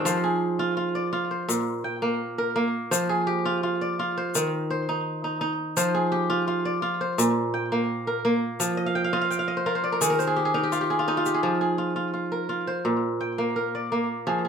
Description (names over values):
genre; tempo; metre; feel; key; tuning
west african traditional, West African string and xylophone music; 85 BPM; 4/4; straight; F dorian; A4 = 442 Hz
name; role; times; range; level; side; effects
kora; arpeggios; 0.0-14.5 s; Ab2 to G5; -23 LUFS; right 1 dB; slapback echo
tube shaker; percussion; 0.1-11.3 s; none; -28 LUFS; left 8 dB; none
room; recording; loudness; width
moderate small room reverb, RT60 0.6 s; close, detailed microphones; -23 LUFS; side -6 dB against mid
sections
0.1-11.4 A section; 11.4-14.5 B section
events
kora fill 8.8-11.4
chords
0.1 Fm; 1.5 Gmadd11/Bb; 2.9 Fm; 4.3 Cm/Eb; 5.8 Fm; 7.2 Gmadd11/Bb; 8.6 N.C.; 11.4 Fm; 12.9 Bb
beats
| 0.06 0.77 1.49 2.20 | 2.92 3.63 4.34 5.05 | 5.76 6.47 7.18 7.89 | 8.60 9.31 10.02 10.72 | 11.43 12.14 12.85 13.56 | 14.27